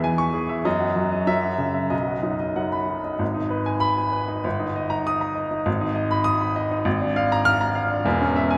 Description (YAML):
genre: classical, virtuoso piano study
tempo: 92-102 BPM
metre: 2/4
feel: rubato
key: B major, G# minor from 3.2 s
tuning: A4 = 440 Hz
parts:
  - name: clear baby grand piano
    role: solo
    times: 0.0-8.6 s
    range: E1 to E#6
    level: -23 LUFS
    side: equal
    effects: none
room: wet church reverb, RT60 3.0 s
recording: none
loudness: -23 LUFS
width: mono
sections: 0.0-3.2 A section; 3.2-8.6 B section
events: none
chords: 0.0 C#m/E; 0.7 D#m/F#; 1.3 F#5; 1.9 B; 3.2 G#m; 4.4 D#/G; 5.7 G#m; 6.9 A#7/G#; 8.1 C#m/E